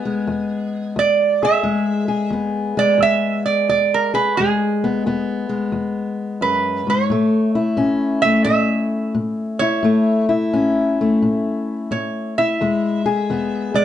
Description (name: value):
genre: acoustic country blues, solo or duo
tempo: 88 BPM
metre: 4/4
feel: swing 66% on 8ths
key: E mixolydian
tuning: A4 = 441 Hz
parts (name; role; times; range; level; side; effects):
- lap resonator guitar; melody; 0.0-13.8 s; G#4 to E5; -18 LUFS; right 5 dB; none
- fingerpicked steel-string acoustic guitar; accompaniment; 0.0-13.8 s; E2 to G#4; -18 LUFS; left 3 dB; none
room: moderate studio reverb, RT60 0.5 s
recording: dark, warm production, nothing above 11.0 kHz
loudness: -16 LUFS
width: side -11 dB against mid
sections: 0.0-13.8 A section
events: none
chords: 0.0 E; 7.1 A; 12.6 E